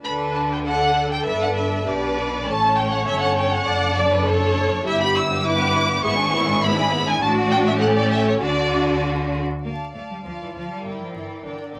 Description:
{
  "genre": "quick classical-period movement for string orchestra",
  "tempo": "100 BPM",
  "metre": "2/4",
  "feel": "straight",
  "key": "D major",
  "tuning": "A4 = 436 Hz",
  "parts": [
    { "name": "rich studio violin section", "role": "melody", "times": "0.0-11.8 s", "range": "B4 to E6", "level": "-25 LUFS", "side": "equal", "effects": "none" },
    { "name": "rich studio viola section", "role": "accompaniment", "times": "0.0-11.8 s", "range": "C4 to D5", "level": "-28 LUFS", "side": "equal", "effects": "none" },
    { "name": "clear studio cello section", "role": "bass", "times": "0.0-11.8 s", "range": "F#2 to Bb3", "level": "-29 LUFS", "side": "equal", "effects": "none" },
    { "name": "clear studio double bass section", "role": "bass", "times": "0.0-11.8 s", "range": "F#1 to D2", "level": "-31 LUFS", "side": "equal", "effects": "none" },
    { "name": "clear studio violin section", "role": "second line", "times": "0.1-11.8 s", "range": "B3 to F5", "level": "-27 LUFS", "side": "equal", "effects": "none" }
  ],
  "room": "wet studio reverb, RT60 0.6 s",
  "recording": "vinyl crackle",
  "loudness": "-20 LUFS",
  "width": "mono",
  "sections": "0.0-9.6 A section; 9.6-11.8 A section",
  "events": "none",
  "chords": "0.0 D5; 1.3 G; 2.5 A; 3.7 D/F#; 4.8 Em/G; 6.0 E7/G#; 7.2 D/A; 7.8 A7; 8.4 D; 9.6 Dm; 10.8 Gm"
}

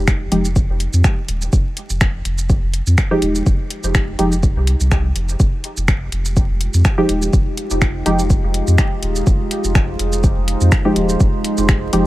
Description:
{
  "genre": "dub techno",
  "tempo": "124 BPM",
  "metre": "4/4",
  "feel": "swing 54% on 16ths",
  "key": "F minor",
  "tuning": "A4 = 440 Hz",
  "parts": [
    { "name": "filtered dub chord stab", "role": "stabs", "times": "0.0-12.1 s", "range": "F3 to G4", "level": "-20 LUFS", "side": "equal", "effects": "chorus, phaser, vintage 12-bit sampler grit, sidechain pumping, dub echo" },
    { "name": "warm sub bass", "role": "bass", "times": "0.0-12.1 s", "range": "Eb1 to F2", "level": "-18 LUFS", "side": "equal", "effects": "sidechain pumping" },
    { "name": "deep house drum kit", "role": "drums", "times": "0.1-12.0 s", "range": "finger snaps, hi-hat, shaker", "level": "-23 LUFS", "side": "equal", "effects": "none" },
    { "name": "electronic kick drum", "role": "drums", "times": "0.1-11.8 s", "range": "none", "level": "-16 LUFS", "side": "equal", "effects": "none" },
    { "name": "deep dark ambient pad", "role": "sustained chords", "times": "6.3-12.1 s", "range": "Ab3 to C5", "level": "-23 LUFS", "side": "right 1 dB", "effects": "chorus, built-in reverb, sidechain pumping" }
  ],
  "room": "little or no reverb",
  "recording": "vinyl crackle",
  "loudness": "-14 LUFS",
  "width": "side -17 dB against mid",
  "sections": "0.0-12.1 A section",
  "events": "filter sweep on synth stab 0.0-12.1",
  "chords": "0.0 Fm9"
}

